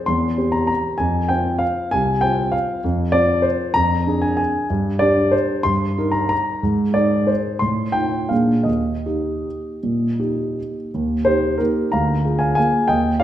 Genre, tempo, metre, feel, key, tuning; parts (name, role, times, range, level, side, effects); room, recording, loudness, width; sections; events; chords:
classical, piano waltz; 152-208 BPM; 3/4; rubato; Eb major; A4 = 441 Hz
warm grand piano; solo; 0.0-13.2 s; C2 to C6; -17 LUFS; equal
wet recital hall reverb, RT60 1.3 s; dark, warm production; -17 LUFS; side -12 dB against mid
0.0-10.9 A section; 10.9-13.2 A section
0.1 C7/E; 1.0 Fm; 2.8 F5; 3.8 Ddim/F; 4.7 G5; 5.7 Eb/G; 6.6 Ab; 7.6 F7/A; 8.3 Bb7; 8.7 Eb; 11.9 Bb7/D